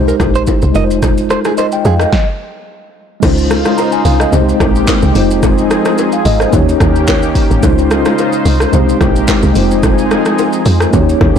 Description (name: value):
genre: afrobeats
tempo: 109 BPM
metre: 4/4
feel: swing 55% on 16ths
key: unclear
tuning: A4 = 440 Hz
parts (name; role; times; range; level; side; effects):
- mellow tine electric piano; accompaniment; 0.0-11.4 s; Ab3 to Bb5; -14 LUFS; left 1 dB; medium stereo tremolo
- woody log drum bass; bass; 0.0-11.4 s; F1 to F2; -14 LUFS; equal; none
- direct-recorded clean electric guitar; riff; 0.1-1.9 s; Ab4 to Eb5; -19 LUFS; right 7 dB; digital delay
- deep house drum kit; drums; 0.1-11.4 s; crash cymbal, handclaps, hi-hat, kick drum, rim click, shaker, snare drum; -16 LUFS; right 1 dB; overdrive, soft clipping on snare
- bongos and congas; percussion; 0.2-11.3 s; none; -20 LUFS; left 5 dB; none
- lush unison pad; sustained chords; 3.2-11.4 s; C3 to C5; -18 LUFS; left 1 dB; chorus
room: little or no reverb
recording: blown-out, overdriven recording, overdrive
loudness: -9 LUFS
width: side -8 dB against mid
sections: 0.0-3.2 A section; 3.2-11.4 B section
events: stop 2.1-3.2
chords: 0.0 Abmaj7; 0.8 Fm7; 2.1 N.C.; 3.2 Dbmaj9; 4.3 Abmaj7; 5.2 Fm7; 6.5 Eb7; 7.6 Dbmaj9; 8.7 Abmaj7; 9.6 Fm7